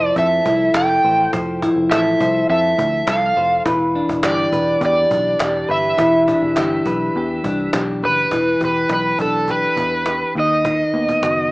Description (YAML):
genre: indie pop, bedroom pop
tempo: 103 BPM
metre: 4/4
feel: straight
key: E minor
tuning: A4 = 439 Hz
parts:
  - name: overdriven slide guitar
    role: melody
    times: 0.0-11.5 s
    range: A4 to G5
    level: -18 LUFS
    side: right 1 dB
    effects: wide subtle chorus, tape echo
  - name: clean electric guitar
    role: accompaniment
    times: 0.0-11.5 s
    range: D#3 to C5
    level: -19 LUFS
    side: left 1 dB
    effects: lush chorus, vibrato effect
  - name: vintage muted picked electric bass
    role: bass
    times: 0.0-11.5 s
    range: E1 to F2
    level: -27 LUFS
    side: equal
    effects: none
  - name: cajon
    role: drums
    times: 0.0-11.4 s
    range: none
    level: -24 LUFS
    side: equal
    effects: none
  - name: group handclap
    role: percussion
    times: 0.7-7.9 s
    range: none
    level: -28 LUFS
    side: right 1 dB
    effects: none
room: moderate studio reverb, RT60 0.6 s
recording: small speaker sound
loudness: -15 LUFS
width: side -22 dB against mid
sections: 0.0-8.3 A section; 8.3-11.5 B section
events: none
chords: 0.0 Fmaj7; 3.7 Em7; 10.3 B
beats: 0.17 0.75 | 1.33 1.91 2.49 3.08 | 3.66 4.24 4.82 5.40 | 5.99 6.57 7.15 7.73 | 8.31 8.89 9.48 10.06 | 10.64 11.22